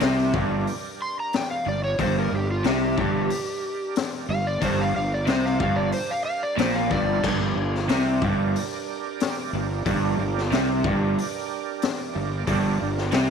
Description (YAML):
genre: blues rock power trio and southern rock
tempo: 91 BPM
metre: 4/4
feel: straight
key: G minor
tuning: A4 = 440 Hz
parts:
  - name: overdriven slide guitar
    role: melody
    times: 0.0-7.2 s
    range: F4 to C6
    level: -28 LUFS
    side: equal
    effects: slapback echo
  - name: overdriven tonewheel organ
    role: sustained chords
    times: 0.0-13.3 s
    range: G3 to D5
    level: -34 LUFS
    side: right 13 dB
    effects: chorus vibrato, slow rotary speaker
  - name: crunchy overdriven guitar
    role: riff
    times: 0.0-13.3 s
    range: G2 to C3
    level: -25 LUFS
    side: equal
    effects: spring reverb
  - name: fuzz fingered electric bass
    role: bass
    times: 0.0-13.3 s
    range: G1 to C2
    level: -28 LUFS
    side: right 1 dB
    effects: overdrive
  - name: raw garage drum kit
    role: drums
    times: 0.0-13.3 s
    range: crash cymbal, hi-hat, kick drum, snare drum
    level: -29 LUFS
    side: left 6 dB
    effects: none
room: light reverb, small room ambience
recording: 1960s-style stereo with parts hard left and right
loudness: -22 LUFS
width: side -6 dB against mid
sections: 0.0-7.2 A section; 7.2-13.3 B section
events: electric slide guitar solo 0.0-7.2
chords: 0.0 Gm